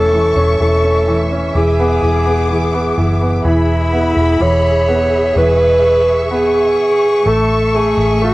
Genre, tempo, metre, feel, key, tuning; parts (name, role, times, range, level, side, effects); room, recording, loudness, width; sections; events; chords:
pop; 63 BPM; 4/4; straight; A4 = 440 Hz
clear alto saxophone; melody; 0.0-8.3 s; E4 to C#5; -14 LUFS; equal
clear concert grand piano; accompaniment; 0.0-8.3 s; E3 to C#4; -19 LUFS; right 1 dB
warm studio string section; sustained chords; 0.0-8.3 s; A3 to D6; -20 LUFS; left 1 dB
vintage muted fingered electric bass; bass; 0.0-8.3 s; E1 to A1; -17 LUFS; equal
moderate studio reverb, RT60 0.5 s; home recording on cassette; -11 LUFS; side -19 dB against mid
0.0-3.5 A section; 3.5-8.3 B section
0.0 A/E; 1.5 E7; 3.5 E; 7.3 A